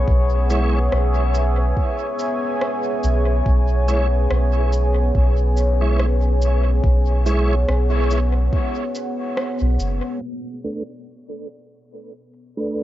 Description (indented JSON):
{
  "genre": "ambient dub",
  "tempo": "71 BPM",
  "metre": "4/4",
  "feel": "swing 57% on 16ths",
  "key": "unclear",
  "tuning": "A4 = 440 Hz",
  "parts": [
    { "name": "deep dark ambient pad", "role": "sustained chords", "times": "0.0-12.8 s", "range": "B3 to G#5", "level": "-24 LUFS", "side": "left 1 dB", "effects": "chorus, built-in reverb" },
    { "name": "soft dub sub bass", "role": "bass", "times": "0.0-10.0 s", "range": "F#1 to B1", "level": "-17 LUFS", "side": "equal", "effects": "none" },
    { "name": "electronic kick drum", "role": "drums", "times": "0.1-8.7 s", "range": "none", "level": "-21 LUFS", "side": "equal", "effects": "overdrive, cassette tape" },
    { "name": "tonewheel organ", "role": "stabs", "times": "0.5-12.8 s", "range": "G#3 to C#5", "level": "-27 LUFS", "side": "right 2 dB", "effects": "chorus vibrato, fast rotary speaker, low-pass filter, dub echo" },
    { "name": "electronic shaker and rim click", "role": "drums", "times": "0.5-12.5 s", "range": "none", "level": "-32 LUFS", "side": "equal", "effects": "overdrive, low-pass filter on perc, cassette tape, low-pass filter on snare, dub echo" }
  ],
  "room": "little or no reverb",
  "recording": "home recording on cassette, low-pass filter, nothing above 7.7 kHz",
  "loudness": "-17 LUFS",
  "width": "side -14 dB against mid",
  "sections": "0.0-10.2 A section; 10.2-12.8 B section",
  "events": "band accent 9.4-9.8; filter sweep on ambient pad 10.2-12.8; filter sweep 10.2-12.8",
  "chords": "0.0 C#m/B; 10.2 Bm7",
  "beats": "| 0.08 0.92 1.77 2.61 | 3.46 4.30 5.15 5.99 | 6.84 7.68 8.53 9.37 | 10.22 11.06 11.91 12.75"
}